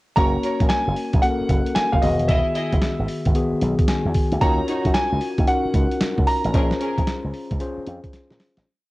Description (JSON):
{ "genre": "R&B, new jack swing", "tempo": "113 BPM", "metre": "4/4", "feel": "swing 64% on 16ths", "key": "unclear", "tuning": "A4 = 440 Hz", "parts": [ { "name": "warm concert grand piano", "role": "melody", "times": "0.2-8.1 s", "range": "D#5 to Bb5", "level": "-24 LUFS", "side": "equal", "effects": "cassette tape" }, { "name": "mellow tine electric piano", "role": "accompaniment", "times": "0.2-8.7 s", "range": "D#3 to G#5", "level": "-25 LUFS", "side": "left 2 dB", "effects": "cassette tape" }, { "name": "warm studio string section", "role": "stabs", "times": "0.2-7.0 s", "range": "Db4 to D#5", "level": "-30 LUFS", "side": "equal", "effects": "cassette tape, tape echo" }, { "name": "slap bass with an envelope filter", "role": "bass", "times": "0.2-8.6 s", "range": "E1 to Bb2", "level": "-24 LUFS", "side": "equal", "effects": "none" }, { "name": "boom bap sampler-style drum kit", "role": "drums", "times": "0.2-8.7 s", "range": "hi-hat, kick drum, snare drum", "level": "-21 LUFS", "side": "equal", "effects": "cassette tape" } ], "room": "light reverb, digital ambience", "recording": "home recording on cassette", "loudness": "-18 LUFS", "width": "side -20 dB against mid", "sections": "0.2-8.7 pre-chorus", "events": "tine electric piano fill 3.6-4.4; fade-out 6.5-8.7; drum fill 8.1-8.7", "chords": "0.2 Gb; 2.0 Emaj7; 4.4 Ebm7; 6.5 Bbm7", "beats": "| 0.17 0.70 1.23 1.76 | 2.29 2.82 3.35 3.88 | 4.41 4.95 5.48 6.01 | 6.54 7.07 7.60 8.13" }